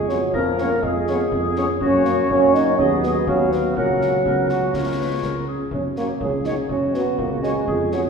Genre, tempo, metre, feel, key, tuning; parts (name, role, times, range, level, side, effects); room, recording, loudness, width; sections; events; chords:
military-style march for wind band; 123 BPM; 2/4; straight; F# major; A4 = 439 Hz
mellow woodwind section; second line; 0.0-8.1 s; F#4 to B4; -27 LUFS; left 1 dB
warm euphonium; second line; 0.0-8.1 s; E#3 to D#4; -22 LUFS; right 3 dB
dark tuba; bass; 0.0-8.1 s; C#2 to F#2; -25 LUFS; right 1 dB
dark trumpet section; melody; 0.1-8.0 s; C#5 to F#5; -29 LUFS; left 2 dB
warm French horn section; accompaniment; 0.1-8.0 s; F#3 to G#4; -25 LUFS; left 5 dB
concert snare drum and concert bass drum; drums; 0.1-8.0 s; -32 LUFS; left 2 dB
wet church reverb, RT60 2.5 s; recorded in a church or concert hall; -18 LUFS; side -5 dB against mid
0.0-8.1 A section
0.0 C#7/E#; 1.8 F#; 2.8 B/D#; 3.8 F#/C#; 4.7 C#; 5.7 F#